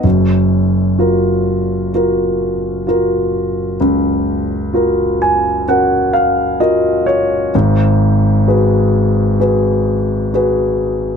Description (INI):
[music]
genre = folk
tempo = 64 BPM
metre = 4/4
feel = straight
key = F# major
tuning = A4 = 440 Hz
[part]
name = dark grand piano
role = solo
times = 0.0-11.2 s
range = F#1 to G#5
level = -12 LUFS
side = equal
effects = none
[sound]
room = light reverb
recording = none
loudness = -12 LUFS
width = side -6 dB against mid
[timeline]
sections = 0.0-11.2 A section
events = none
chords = 0.0 F#maj7; 7.5 G#m7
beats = | 0.05 0.99 1.93 2.87 | 3.81 4.74 5.67 6.61 | 7.54 8.47 9.39 10.33